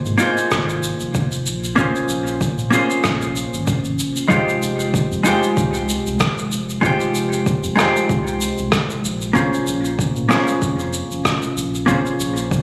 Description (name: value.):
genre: sunset chillout.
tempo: 95 BPM.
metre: 4/4.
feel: swing 55% on 16ths.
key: F minor.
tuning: A4 = 441 Hz.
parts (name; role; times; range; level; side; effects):
vintage hollow-body jazz guitar; accompaniment; 0.0-12.6 s; Ab3 to C5; -21 LUFS; equal; digital delay.
round analog bass; bass; 0.1-12.6 s; F1 to Bb2; -29 LUFS; equal; none.
shaker and rim click; drums; 0.1-12.6 s; none; -26 LUFS; equal; none.
electronic kick drum; drums; 0.5-12.6 s; none; -26 LUFS; equal; overdrive.
room: light reverb, small room reverb.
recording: recorded on a phone in the room, studio reverb, compression.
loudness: -19 LUFS.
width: mono.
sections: 0.0-4.3 A section; 4.3-12.6 B section.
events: none.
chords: 0.0 Ab69; 1.8 Bbm7; 4.3 Fm7; 9.4 Bbm7.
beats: 0.52 1.15 | 1.78 2.41 3.04 3.67 | 4.30 4.94 5.57 6.20 | 6.83 7.46 8.10 8.73 | 9.36 9.99 10.62 11.25 | 11.88 12.52.